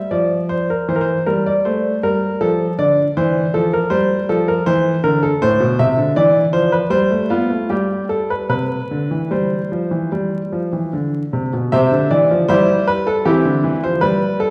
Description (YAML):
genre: classical, baroque-style suite movement for grand piano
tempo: 73-81 BPM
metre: 4/4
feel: rubato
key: C major from 5.4 s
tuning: A4 = 436 Hz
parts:
  - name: warm concert grand piano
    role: solo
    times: 0.0-14.5 s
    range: A2 to E5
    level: -17 LUFS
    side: equal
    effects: none
room: wet recital hall reverb, RT60 1.6 s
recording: heard from further back in the room, vinyl crackle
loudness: -17 LUFS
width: mono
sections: 0.0-11.7 A section; 11.7-14.5 B section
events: none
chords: 0.0 F5; 0.9 C13/E; 2.4 Dm9; 5.4 F5; 6.9 C5/G; 7.7 N.C.; 8.5 C